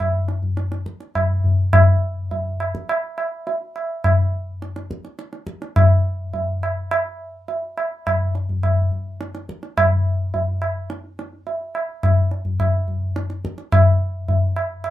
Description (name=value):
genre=indian classical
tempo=105 BPM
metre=7/4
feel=straight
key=none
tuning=none
part: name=tabla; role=percussion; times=0.0-14.9 s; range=none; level=-18 LUFS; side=equal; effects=none
room=moderate small room reverb, RT60 0.5 s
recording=minimal, uncompressed stereo recording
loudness=-18 LUFS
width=side -14 dB against mid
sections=0.0-13.7 A section; 13.7-14.9 B section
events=speeding up 0.0-14.9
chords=none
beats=0.57 1.15 | 1.73 2.31 2.89 3.47 4.04 4.62 5.19 | 5.77 6.34 6.91 7.48 8.05 8.63 9.20 | 9.77 10.33 10.90 11.47 12.03 12.60 13.16 | 13.73 14.29 14.85